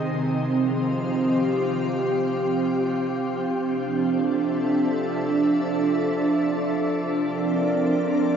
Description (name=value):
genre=ambient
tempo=free time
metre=none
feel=none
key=unclear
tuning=A4 = 440 Hz
part: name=soft additive organ-like pad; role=sustained chords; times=0.0-8.4 s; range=F3 to F5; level=-21 LUFS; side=right 1 dB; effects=ensemble chorus, built-in reverb
part: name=bowed-like drone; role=drone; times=0.0-8.4 s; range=C3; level=-35 LUFS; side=equal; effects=built-in reverb
room=wet shimmer reverb, RT60 6.6 s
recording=nothing above 7.7 kHz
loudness=-21 LUFS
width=side -7 dB against mid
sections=0.0-8.4 A section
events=fade-out on synth drone 0.0-8.4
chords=0.1 Fsus2; 3.4 Dmadd9; 6.7 Bbadd9